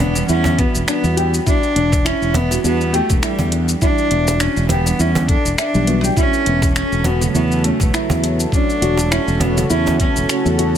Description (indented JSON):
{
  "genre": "organic downtempo",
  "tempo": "102 BPM",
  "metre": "4/4",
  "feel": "swing 56% on 16ths",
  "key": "E dorian",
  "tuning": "A4 = 440 Hz",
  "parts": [
    { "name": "rich cello", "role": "melody", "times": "0.0-10.5 s", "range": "F#3 to D4", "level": "-20 LUFS", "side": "equal", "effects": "digital delay" },
    { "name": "muted felt-like synth keys", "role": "accompaniment", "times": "0.0-10.8 s", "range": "C#3 to F#5", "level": "-24 LUFS", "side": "right 2 dB", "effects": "chorus, phaser, sidechain pumping" },
    { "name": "nylon-string guitar", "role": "arpeggios", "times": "0.0-10.7 s", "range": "B3 to E5", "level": "-22 LUFS", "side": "equal", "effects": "digital delay" },
    { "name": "fretless electric bass", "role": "bass", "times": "0.0-10.8 s", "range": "E1 to E2", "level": "-19 LUFS", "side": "equal", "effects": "sidechain pumping" },
    { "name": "cajon", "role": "percussion", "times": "0.0-10.0 s", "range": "none", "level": "-23 LUFS", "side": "right 2 dB", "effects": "none" },
    { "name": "deep house drum kit", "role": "drums", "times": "0.2-10.8 s", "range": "finger snaps, hi-hat, shaker", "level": "-24 LUFS", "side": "left 1 dB", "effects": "none" },
    { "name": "electronic kick drum", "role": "drums", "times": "0.6-10.1 s", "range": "none", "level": "-18 LUFS", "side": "equal", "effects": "none" },
    { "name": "warm analog pad", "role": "sustained chords", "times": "6.2-10.8 s", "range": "F#4 to A5", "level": "-27 LUFS", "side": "left 1 dB", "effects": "chorus, sidechain pumping" }
  ],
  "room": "light reverb",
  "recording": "none",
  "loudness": "-14 LUFS",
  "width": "side -9 dB against mid",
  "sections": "0.0-10.8 A section",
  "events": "none",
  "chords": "0.0 Em9; 6.2 F#m/E",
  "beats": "0.29 0.88 | 1.47 2.06 2.64 3.23 | 3.82 4.41 5.00 5.58 | 6.17 6.76 7.35 7.94 | 8.53 9.11 9.70 10.29"
}